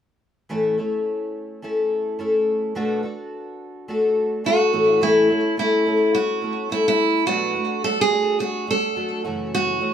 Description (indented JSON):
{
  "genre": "pop",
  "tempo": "106 BPM",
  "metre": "4/4",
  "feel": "swing 60% on 16ths",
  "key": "A major",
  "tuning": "A4 = 437 Hz",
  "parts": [
    { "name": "fingerpicked twelve-string acoustic guitar", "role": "accompaniment", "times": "0.5-9.9 s", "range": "F#2 to A4", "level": "-21 LUFS", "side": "left 2 dB", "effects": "none" },
    { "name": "picked steel-string acoustic guitar", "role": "melody", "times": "4.5-9.9 s", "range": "E4 to A4", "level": "-20 LUFS", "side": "right 3 dB", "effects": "digital delay" }
  ],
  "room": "light reverb",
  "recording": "band playing live in one room",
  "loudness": "-19 LUFS",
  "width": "side -8 dB against mid",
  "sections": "0.5-5.0 A section; 5.0-9.9 B section",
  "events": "none",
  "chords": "0.5 A; 2.8 Bm7; 4.7 A; 7.3 Bm7; 9.3 F#m7",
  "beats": "| 0.50 1.06 1.63 2.19 | 2.76 3.32 3.89 4.45 | 5.02 5.58 6.14 6.71 | 7.28 7.84 8.40 8.97 | 9.53"
}